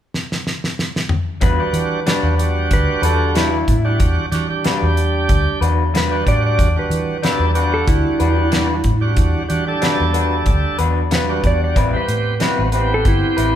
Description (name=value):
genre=straight-eighth soul blues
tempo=93 BPM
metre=4/4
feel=swing 55% on 16ths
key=E minor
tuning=A4 = 437 Hz
part: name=damped 70s drum kit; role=drums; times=0.1-13.5 s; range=hi-hat, kick drum, snare drum, toms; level=-20 LUFS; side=equal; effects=none
part: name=clean lap steel guitar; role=melody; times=1.4-13.6 s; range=E4 to D5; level=-22 LUFS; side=right 1 dB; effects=none
part: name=electric guitar through a small old amp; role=stabs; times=1.4-13.6 s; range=G3 to B4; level=-22 LUFS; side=left 5 dB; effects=spring reverb
part: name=vintage muted fingered electric bass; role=bass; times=1.4-13.6 s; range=G1 to E3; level=-19 LUFS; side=equal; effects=none
part: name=bright tonewheel organ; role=accompaniment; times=1.6-13.6 s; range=G3 to A4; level=-22 LUFS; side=right 3 dB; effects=overdrive, slow rotary speaker
room=moderate large studio reverb, RT60 1.4 s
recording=band playing live in one room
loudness=-15 LUFS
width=side -10 dB against mid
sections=0.0-1.4 A section; 1.4-13.6 B section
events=drum fill 0.1-1.4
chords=0.0 N.C.; 1.4 Em9; 11.8 Am9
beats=0.12 0.77 | 1.41 2.06 2.71 3.35 | 4.00 4.64 5.29 5.94 | 6.58 7.23 7.88 8.53 | 9.17 9.82 10.46 11.11 | 11.76 12.41 13.05